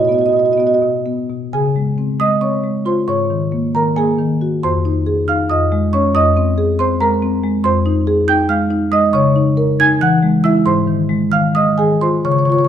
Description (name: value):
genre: classical, contemporary piece for solo marimba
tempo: 245-286 BPM (eighths)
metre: 7/8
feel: rubato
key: unclear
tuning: A4 = 440 Hz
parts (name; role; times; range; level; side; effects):
- marimba with soft mallets; solo; 0.0-12.7 s; F2 to Ab6; -13 LUFS; equal; none
room: moderate stone room reverb, RT60 1.2 s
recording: dark, warm production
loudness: -13 LUFS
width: side -9 dB against mid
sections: 0.0-1.5 A section; 1.5-12.7 B section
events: none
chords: 0.0 Cb; 1.5 Dbmaj7; 3.1 Ab11; 4.6 Fm7; 5.5 Dbadd9/F; 6.2 Abadd9/F; 7.6 Fm7; 9.1 Dbsus2; 10.0 Eadd9; 10.7 Ab6